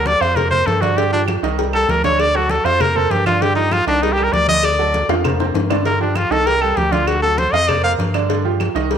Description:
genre	latin, salsa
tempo	197 BPM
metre	4/4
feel	straight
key	G minor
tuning	A4 = 440 Hz
part	bright trumpet	melody	0.0-7.9 s	D4 to F5	-17 LUFS	left 1 dB	none
part	bright baby grand piano	accompaniment	0.0-9.0 s	D3 to F5	-21 LUFS	right 10 dB	none
part	rubbery square bass	bass	0.0-9.0 s	C2 to G2	-22 LUFS	left 1 dB	none
part	congas	percussion	0.1-9.0 s	none	-26 LUFS	equal	none
part	cowbell and bongos	percussion	0.1-9.0 s	none	-25 LUFS	left 10 dB	none
part	claves	percussion	1.3-8.8 s	none	-32 LUFS	right 9 dB	none
room	moderate echo chamber reverb, RT60 1.6 s, small room ambience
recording	1960s-style stereo with parts hard left and right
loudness	-14 LUFS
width	side -8 dB against mid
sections	0.0-9.0 A section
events	trumpet solo 0.0-9.0; drum fill 5.1-5.9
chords	0.4 Fsus4; 1.0 G5; 1.6 C5; 2.2 D; 2.8 Fsus4; 3.4 G5; 4.0 C5; 4.6 D; 5.2 Fsus4; 5.9 G5; 6.5 C5; 7.1 D; 7.7 Fsus4; 8.3 G5

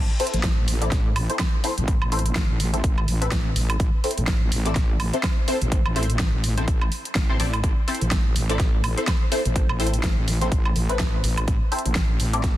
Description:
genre	bass house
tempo	125 BPM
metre	4/4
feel	swing 57% on 16ths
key	A minor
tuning	A4 = 440 Hz
part	wobble bass	bass	0.0-12.6 s	A1	-24 LUFS	equal	chorus, overdrive, sidechain pumping
part	band-passed chord stab	stabs	0.2-12.4 s	C4 to D5	-28 LUFS	left 2 dB	phaser, ensemble chorus, sidechain pumping, dub echo
part	big-room dance drum kit	drums	0.2-12.5 s	hi-hat, snare drum, woodblock	-28 LUFS	right 1 dB	overdrive
part	electronic kick drum	drums	0.4-12.5 s	none	-22 LUFS	equal	overdrive
room	little or no reverb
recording	dense, heavily limited modern master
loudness	-20 LUFS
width	side -14 dB against mid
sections	0.0-12.6 A section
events	filter sweep on synth stab 0.0-12.6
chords	0.0 Am

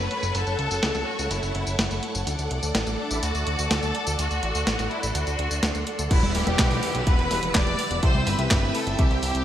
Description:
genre	italo disco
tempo	125 BPM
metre	4/4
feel	straight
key	E minor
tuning	A4 = 440 Hz
part	clear studio violin section	melody	0.0-9.4 s	D4 to D5	-29 LUFS	left 1 dB	digital delay
part	string machine, full ensemble	sustained chords	0.0-9.4 s	C4 to E6	-31 LUFS	equal	phaser, ensemble chorus
part	fat analog bass	bass	0.0-9.4 s	D1 to D2	-28 LUFS	equal	tube saturation
part	clean 12-bit digital drum machine	drums	0.1-9.4 s	congas, crash cymbal, handclaps, hi-hat, snare drum, tambourine	-28 LUFS	equal	low-pass filter on hats, low-pass filter on perc, low-pass filter on snare, low-pass filter on cymbals, low-pass filter on room
part	dark grand piano	stabs	6.1-9.4 s	C3 to F#5	-32 LUFS	equal	wide subtle chorus
part	electronic kick drum	drums	6.1-9.1 s	none	-21 LUFS	equal	none
part	downlifter	sound effects	6.1-9.4 s	none	-34 LUFS	equal	none
room	moderate lush hall reverb, RT60 1.8 s, digital ambience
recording	bright 1980s-style digital production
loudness	-22 LUFS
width	side -11 dB against mid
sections	0.0-6.1 A section; 6.1-9.4 B section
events	none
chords	0.0 F#m; 2.3 D; 6.1 Emadd9; 8.0 C

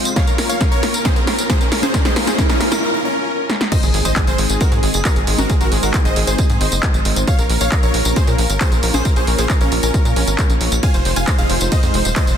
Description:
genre	uplifting trance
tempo	135 BPM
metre	4/4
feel	straight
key	Bb minor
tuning	A4 = 440 Hz
part	supersaw stab	melody	0.0-12.4 s	Db4 to Ab5	-22 LUFS	equal	sidechain pumping, tape echo
part	riser and impact	sound effects	0.0-5.5 s	none	-26 LUFS	right 1 dB	none
part	punchy analog drum machine	drums	0.1-12.4 s	congas, crash cymbal, handclaps, hi-hat, ride cymbal, snare drum, tambourine	-21 LUFS	equal	none
part	electronic kick drum	drums	0.2-12.3 s	none	-17 LUFS	equal	none
part	tight sequencer bass	bass	3.8-12.4 s	Eb1 to Bb2	-20 LUFS	equal	sidechain pumping
room	light reverb, digital ambience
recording	dense, heavily limited modern master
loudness	-14 LUFS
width	side -8 dB against mid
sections	0.0-3.7 A section; 3.7-12.4 B section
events	build-up 0.0-3.7; drum fill 0.0-2.8, 3.5; riser 0.0-2.8; break 2.8-3.7; drop 3.7-12.4; impact 3.7-5.5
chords	0.2 Bbm; 3.7 Ab; 7.3 Bbm; 10.8 Fm7

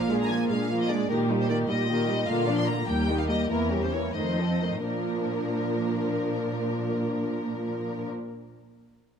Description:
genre	quick classical-period movement for string orchestra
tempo	85-103 BPM (dotted quarters)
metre	6/8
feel	straight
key	Bb major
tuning	A4 = 440 Hz
part	rich symphonic violin section	melody	0.0-8.1 s	Bb4 to C6	-34 LUFS	left 2 dB	none
part	rich symphonic violin section	second line	0.0-8.1 s	C4 to D5	-31 LUFS	left 4 dB	none
part	warm symphonic viola section	accompaniment	0.0-8.1 s	D3 to D4	-29 LUFS	right 2 dB	none
part	warm symphonic cello section	bass	0.0-8.1 s	Eb2 to Bb2	-30 LUFS	right 2 dB	none
room	moderate scoring stage reverb, RT60 1.9 s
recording	close, detailed microphones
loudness	-24 LUFS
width	side -7 dB against mid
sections	0.0-4.8 A section; 4.8-7.6 B section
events	slowing down 1.7-4.8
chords	0.0 Bb7; 1.1 Eb/Bb; 2.3 Bb; 2.9 Eb; 3.5 Edim7; 4.1 F7; 4.8 Bb

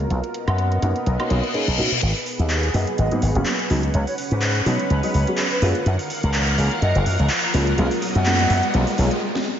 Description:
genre	filtered disco house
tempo	125 BPM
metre	4/4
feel	swing 55% on 16ths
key	G# dorian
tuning	A4 = 442 Hz
part	string machine, full ensemble	sustained chords	0.0-9.2 s	B3 to F#5	-27 LUFS	right 1 dB	ensemble chorus, low-pass filter
part	slap bass with an envelope filter	bass	0.0-9.1 s	F#1 to B2	-20 LUFS	equal	low-pass filter
part	house drum kit	drums	0.0-9.4 s	handclaps, hi-hat, snare drum, woodblock	-26 LUFS	equal	low-pass filter on hats, small room ambience, low-pass filter on perc, low-pass filter on snare
part	mellow hollow silver concert flute	melody	0.5-8.8 s	B4 to F#5	-28 LUFS	equal	low-pass filter, diffuse ambient delay
part	warm concert grand piano	accompaniment	0.8-9.1 s	F#3 to G#4	-26 LUFS	equal	phaser, low-pass filter
part	reverse cymbal and riser	sound effects	1.3-9.2 s	none	-28 LUFS	left 2 dB	none
room	wet lush hall reverb, RT60 1.6 s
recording	dreamy mix soaked in reverb, nothing above 7.5 kHz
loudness	-18 LUFS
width	side -9 dB against mid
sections	0.0-2.0 A section; 2.0-9.6 B section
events	reverse cymbal 1.3-2.0; build-up 2.0-9.6; riser 2.0-9.2; filter sweep 2.0-9.6; stop 9.2-9.6; drum fill 9.3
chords	0.1 Bmaj7; 2.0 G#m7; 3.7 C#7sus4; 5.6 F#maj7; 7.8 Bmaj7

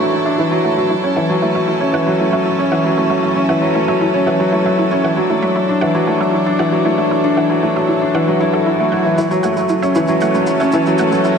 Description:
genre	piano and strings electronica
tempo	116 BPM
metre	4/4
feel	straight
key	F# minor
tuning	A4 = 441 Hz
part	warm string quartet	sustained chords	0.0-11.4 s	F#3 to A4	-20 LUFS	equal	low-pass filter
part	felt-muted upright piano	riff	0.0-11.4 s	E3 to A4	-14 LUFS	equal	tape echo
part	analog pluck	arpeggios	0.1-11.3 s	E4 to F#5	-24 LUFS	right 2 dB	chorus, tape echo
part	swell and riser	sound effects	8.3-11.4 s	none	-29 LUFS	right 2 dB	none
part	shaker	drums	9.2-11.3 s	none	-36 LUFS	right 1 dB	low-pass filter on perc, low-pass filter on room
part	clear studio double bass section	bass	9.4-11.2 s	F#1	-30 LUFS	right 1 dB	none
room	wet lush hall reverb, RT60 1.6 s, small room ambience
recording	dreamy mix soaked in reverb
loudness	-13 LUFS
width	side -6 dB against mid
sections	0.0-9.2 A section; 9.2-11.4 B section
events	swell 8.3-9.2; build-up 9.2-11.4; filter sweep on string quartet 9.2-11.4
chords	0.0 Dadd9; 0.9 F#m7; 5.0 Dadd9; 9.2 F#m7

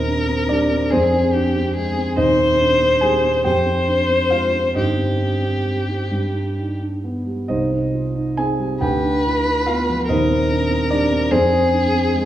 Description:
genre	classical, romantic duo for violin and grand piano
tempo	45 BPM (dotted quarters)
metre	6/8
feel	uneven beats, rubato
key	C minor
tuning	A4 = 440 Hz
part	warm violin	melody	0.0-12.3 s	G4 to C5	-20 LUFS	left 1 dB	none
part	dark concert grand piano	accompaniment	0.0-12.3 s	Eb1 to Ab5	-18 LUFS	equal	none
room	wet recital hall reverb, RT60 1.6 s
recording	small room ambience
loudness	-16 LUFS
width	side -12 dB against mid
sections	0.0-12.3 A section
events	none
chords	0.0 Cm/Eb; 0.9 Fm; 2.2 Cm/Eb; 3.5 Fm; 4.8 Cm/G; 6.1 G; 7.5 Cm; 8.8 Bdim/D; 10.1 Cm/Eb; 11.3 Fm

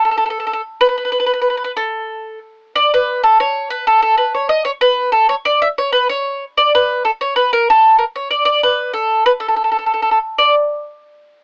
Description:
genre	italian folk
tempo	126 BPM (dotted quarters)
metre	6/8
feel	rubato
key	unclear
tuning	A4 = 442 Hz
part	bowl-back mandolin	solo	0.0-10.5 s	A4 to E5	-12 LUFS	equal	none
room	little or no reverb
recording	cassette tape, AM radio sound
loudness	-12 LUFS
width	side -36 dB against mid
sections	0.0-2.7 A section; 2.7-10.4 B section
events	none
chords	none

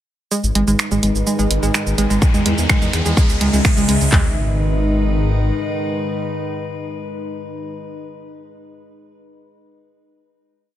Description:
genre	melodic techno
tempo	126 BPM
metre	4/4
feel	straight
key	G# minor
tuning	A4 = 435 Hz
part	evolving wavetable pad	sustained chords	0.3-7.7 s	C#3 to E5	-25 LUFS	left 1 dB	chorus, built-in reverb, sidechain pumping
part	analog pluck	arpeggios	0.3-4.3 s	G#3	-20 LUFS	right 2 dB	chorus, sidechain pumping, digital delay
part	analog drone	drone	0.9-7.7 s	G#2 to D#3	-29 LUFS	left 1 dB	chorus, sidechain pumping
part	punchy analog drum machine	drums	0.3-4.1 s	finger snaps, hi-hat, shaker	-21 LUFS	right 3 dB	sidechain pumping on perc, sidechain pumping on hats
part	riser	sound effects	1.2-4.1 s	none	-27 LUFS	equal	none
part	dark detuned saw bass	bass	0.4-5.5 s	G#1 to E2	-19 LUFS	equal	sidechain pumping
part	house drum kit	drums	2.2-4.2 s	handclaps, kick drum, toms	-15 LUFS	equal	none
room	light reverb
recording	none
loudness	-15 LUFS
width	side -12 dB against mid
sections	0.3-4.1 build; 4.1-7.9 final chord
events	build-up 0.3-4.1; filter sweep on ambient pad 0.3-4.1; riser 1.2-4.1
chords	0.3 G#m; 2.2 E; 3.2 C#m; 4.1 G#m

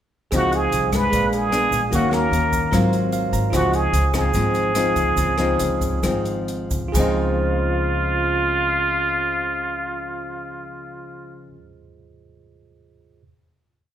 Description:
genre	bossa nova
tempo	127-150 BPM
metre	4/4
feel	straight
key	Db major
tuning	A4 = 440 Hz
part	bell-like tine electric piano	accompaniment	0.3-13.2 s	F4 to Bb5	-30 LUFS	right 7 dB	none
part	nylon-string guitar	accompaniment	0.3-11.6 s	Ab2 to Gb4	-24 LUFS	left 3 dB	none
part	upright bass	bass	0.3-11.5 s	Ab1 to Eb2	-25 LUFS	equal	none
part	open jazz drum kit	drums	0.3-7.1 s	hi-hat, kick drum, rim click, splash cymbal	-28 LUFS	equal	none
part	tube shaker	percussion	0.3-7.1 s	none	-36 LUFS	right 9 dB	none
part	trumpet with plunger mute	melody	0.4-11.5 s	F4 to Cb5	-22 LUFS	right 2 dB	none
room	moderate recital hall reverb, RT60 1.5 s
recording	recorded in a church or concert hall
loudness	-18 LUFS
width	side -10 dB against mid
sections	0.3-6.9 A section; 6.9-10.7 final chord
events	tine electric piano fill 2.9-3.5; slowing down 3.5-6.9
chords	0.3 Dbmaj9; 1.1 Bb7b9; 1.9 Ebm7; 2.7 Ab13; 3.5 Dbmaj9

